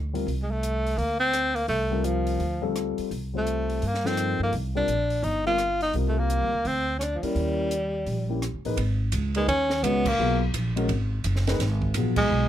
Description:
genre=modal jazz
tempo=169 BPM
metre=4/4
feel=swing 63% on 8ths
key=C dorian, G# dorian from 8.8 s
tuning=A4 = 439 Hz
part: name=upright bass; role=bass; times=0.0-12.5 s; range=F#1 to G2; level=-27 LUFS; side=right 1 dB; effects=none
part: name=dark baby grand piano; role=accompaniment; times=0.1-12.5 s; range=F3 to C#5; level=-30 LUFS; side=left 4 dB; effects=none
part: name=compact cocktail drum kit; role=drums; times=0.2-12.2 s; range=crash cymbal, hi-hat, kick drum, ride cymbal, rim click, snare drum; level=-35 LUFS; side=right 2 dB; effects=none
part: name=breathy tenor saxophone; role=melody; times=0.4-12.5 s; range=F3 to F4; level=-25 LUFS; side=equal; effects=none
room=light reverb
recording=close, detailed microphones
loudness=-23 LUFS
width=side -11 dB against mid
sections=0.0-8.8 A section; 8.8-12.5 B section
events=band accent 10.0, 12.1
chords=0.3 Gm/C; 3.1 Cm11; 5.9 Gm/C; 7.4 Eb7b9; 8.8 G#m9

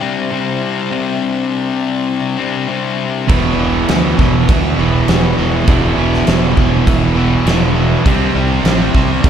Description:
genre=quiet-loud alternative rock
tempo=101 BPM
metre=4/4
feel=straight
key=E minor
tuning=A4 = 440 Hz
part: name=rich chamber string section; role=sustained chords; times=0.0-9.3 s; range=G3 to E5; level=-26 LUFS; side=right 1 dB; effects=none
part: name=fuzz guitar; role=riff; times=0.0-9.3 s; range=E2 to C4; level=-18 LUFS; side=left 7 dB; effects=distortion
part: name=overdriven electric guitar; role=riff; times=3.3-9.3 s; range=E2 to C4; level=-20 LUFS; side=right 1 dB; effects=none
part: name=thick fuzz guitar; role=riff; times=3.3-9.3 s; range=E2 to C4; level=-17 LUFS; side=right 8 dB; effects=distortion, slapback echo
part: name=fuzz fingered electric bass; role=bass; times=3.3-9.3 s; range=E1 to D2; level=-18 LUFS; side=right 1 dB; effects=overdrive
part: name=big rock drum kit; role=drums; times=3.3-9.3 s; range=crash cymbal, kick drum, snare drum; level=-15 LUFS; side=right 1 dB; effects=none
room=moderate concert hall reverb, RT60 2.3 s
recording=big arena sound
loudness=-12 LUFS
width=side -8 dB against mid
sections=0.0-9.3 A section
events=none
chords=0.0 Cadd9; 3.3 Em7; 8.1 Cadd9

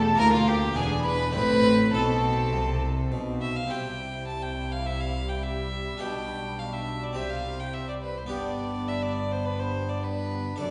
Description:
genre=classical, baroque-style concerto movement with solo episodes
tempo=104 BPM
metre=4/4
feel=straight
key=A minor, C major from 3.7 s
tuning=A4 = 440 Hz
part: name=warm chamber violin section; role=melody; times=0.0-10.7 s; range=G4 to B5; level=-41 LUFS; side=equal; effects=none
part: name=rich chamber violin section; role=second line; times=0.0-10.7 s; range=C4 to B4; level=-37 LUFS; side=equal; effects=none
part: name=dark chamber viola section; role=accompaniment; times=0.0-10.7 s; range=G3 to D4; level=-37 LUFS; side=equal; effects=none
part: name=harpsichord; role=accompaniment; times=0.0-10.7 s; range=D2 to A4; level=-40 LUFS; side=equal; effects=none
part: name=rich chamber double bass section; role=bass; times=0.0-10.7 s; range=E1 to D2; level=-35 LUFS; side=equal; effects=none
part: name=warm chamber cello section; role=bass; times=0.0-10.7 s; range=D2 to C3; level=-33 LUFS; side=equal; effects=none
part: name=rich violin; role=melody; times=0.2-10.7 s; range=F4 to A5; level=-32 LUFS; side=equal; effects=none
room=wet recital hall reverb, RT60 1.3 s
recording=recorded in a church or concert hall, nothing above 10.3 kHz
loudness=-27 LUFS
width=mono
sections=0.0-3.7 A section; 3.7-10.7 B section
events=none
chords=0.2 Bb/D; 0.8 E7; 1.4 Am; 3.7 C; 6.0 G/B; 7.2 C5; 8.3 G

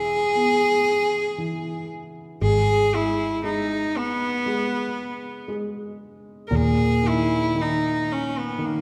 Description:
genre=folk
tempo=58 BPM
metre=4/4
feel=straight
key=G# minor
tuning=A4 = 439 Hz
part: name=bright cello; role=melody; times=0.0-8.8 s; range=A#3 to A#4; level=-25 LUFS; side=equal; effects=none
part: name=felt-muted upright piano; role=accompaniment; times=0.0-8.8 s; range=A#2 to B3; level=-30 LUFS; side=equal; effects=none
part: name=vintage muted fingered electric bass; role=bass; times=0.0-8.8 s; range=E1 to D#2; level=-29 LUFS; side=equal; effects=none
room=wet concert hall reverb, RT60 1.8 s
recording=recorded in a church or concert hall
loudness=-23 LUFS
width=mono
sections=0.0-8.8 A section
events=none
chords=0.0 E; 2.4 G#m; 6.5 D#5

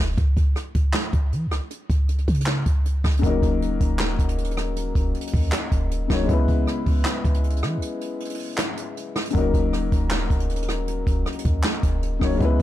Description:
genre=hip hop, trap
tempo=157 BPM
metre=4/4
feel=half-time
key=Eb phrygian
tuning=A4 = 440 Hz
part: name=clean 808-style bass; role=bass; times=0.0-12.6 s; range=Eb1 to Fb3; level=-23 LUFS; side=equal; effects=none
part: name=jazz brush drum kit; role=drums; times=0.2-12.6 s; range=handclaps, hi-hat, kick drum, rim click, snare drum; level=-23 LUFS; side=equal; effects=none
part: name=dark baby grand piano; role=accompaniment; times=3.2-12.6 s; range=Db3 to Db5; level=-26 LUFS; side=left 5 dB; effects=none
room=small room reverb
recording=dark, warm production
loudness=-20 LUFS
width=side -13 dB against mid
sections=0.0-3.2 A section; 3.2-12.6 B section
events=break 0.0-3.2, 7.8-9.3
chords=0.2 N.C.; 3.2 Ebm7; 6.3 Dbm7; 9.3 Ebm7

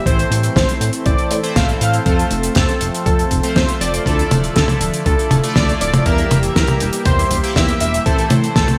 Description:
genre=italo disco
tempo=120 BPM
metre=4/4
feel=straight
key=D minor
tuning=A4 = 440 Hz
part: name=warm analog pad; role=sustained chords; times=0.0-8.8 s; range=D3 to E5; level=-26 LUFS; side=equal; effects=chorus
part: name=chorused polysynth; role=stabs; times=0.0-8.8 s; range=A3 to E5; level=-26 LUFS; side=equal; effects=none
part: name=unison lead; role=melody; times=0.1-8.8 s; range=A4 to F5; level=-24 LUFS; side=equal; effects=lush chorus, vintage 12-bit sampler grit, delay
part: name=chorused synth bass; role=bass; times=0.1-8.7 s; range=D1 to A2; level=-23 LUFS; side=equal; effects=tube saturation
part: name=damped 70s drum kit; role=drums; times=0.1-8.8 s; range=hi-hat, snare drum, toms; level=-21 LUFS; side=equal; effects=studio ambience, gated reverb
part: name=electronic kick drum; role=drums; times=0.1-8.7 s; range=none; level=-22 LUFS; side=equal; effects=studio ambience
room=moderate lush hall reverb, RT60 2.1 s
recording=bright 1980s-style digital production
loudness=-16 LUFS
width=mono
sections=0.0-8.8 A section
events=none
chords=0.1 Am; 2.1 F; 4.1 Dmadd9; 6.1 Edim; 8.1 Am

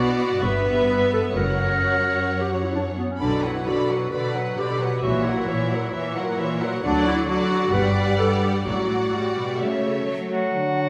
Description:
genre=classical, dramatic, fast romantic movement for symphony orchestra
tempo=130 BPM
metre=4/4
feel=straight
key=D major from 6.8 s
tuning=A4 = 441 Hz
part: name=warm symphonic violin section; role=melody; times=0.0-10.3 s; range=E5 to B5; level=-35 LUFS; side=equal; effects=none
part: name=clear clarinet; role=second line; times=0.0-10.3 s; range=B3 to B4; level=-27 LUFS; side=equal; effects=none
part: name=rich studio violin section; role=second line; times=0.0-10.3 s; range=A#4 to D5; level=-33 LUFS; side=equal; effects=none
part: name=rich symphonic viola section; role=accompaniment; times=0.0-10.3 s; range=D3 to B3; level=-30 LUFS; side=equal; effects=none
part: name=rich symphonic cello section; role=bass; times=0.0-10.5 s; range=F#2 to F#3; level=-29 LUFS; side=equal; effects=none
part: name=rich symphonic double bass section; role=bass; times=0.4-9.1 s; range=F#1 to D2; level=-32 LUFS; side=equal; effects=none
part: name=bright oboe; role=second line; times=10.3-10.9 s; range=F#4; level=-32 LUFS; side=equal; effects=none
part: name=hollow concert flute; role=second line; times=10.3-10.9 s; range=F#5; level=-30 LUFS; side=equal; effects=none
part: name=mellow bassoon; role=accompaniment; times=10.3-10.9 s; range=F#3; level=-27 LUFS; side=equal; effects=none
part: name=warm French horn section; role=sustained chords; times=10.5-10.9 s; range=D3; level=-30 LUFS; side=equal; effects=none
room=wet recital hall reverb, RT60 1.5 s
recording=recorded in a church or concert hall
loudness=-23 LUFS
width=mono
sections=0.0-10.5 A section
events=none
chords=0.4 Em/G; 1.3 F#; 3.2 Bm; 5.0 F#7/A#; 6.8 D; 7.7 Gmaj7; 8.7 D/A; 9.6 A/C#

